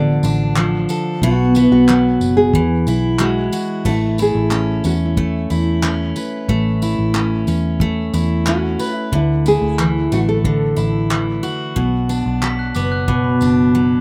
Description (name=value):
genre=acoustic pop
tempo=91 BPM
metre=4/4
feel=straight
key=A major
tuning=A4 = 440 Hz
part: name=nylon-string guitar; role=melody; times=0.0-10.9 s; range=E4 to D5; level=-24 LUFS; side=equal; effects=slapback echo
part: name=picked steel-string acoustic guitar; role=accompaniment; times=0.0-14.0 s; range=B2 to B4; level=-19 LUFS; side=equal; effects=none
part: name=vintage muted fingered electric bass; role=bass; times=0.0-14.0 s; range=F#1 to E2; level=-22 LUFS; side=equal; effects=none
part: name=unplugged drum kit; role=drums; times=0.2-13.6 s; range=crash cymbal, handclaps, kick drum, tambourine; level=-27 LUFS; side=equal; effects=none
part: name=glockenspiel with soft plastic mallets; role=second line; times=12.4-14.0 s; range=B5 to B6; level=-28 LUFS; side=equal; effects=none
room=little or no reverb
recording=recorded outdoors, with no room sound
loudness=-17 LUFS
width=mono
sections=0.0-3.9 A section; 3.9-14.0 B section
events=none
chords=0.0 Dm6; 1.2 B5; 2.5 Eadd9; 3.9 Aadd9; 9.1 Dadd9; 11.8 Bm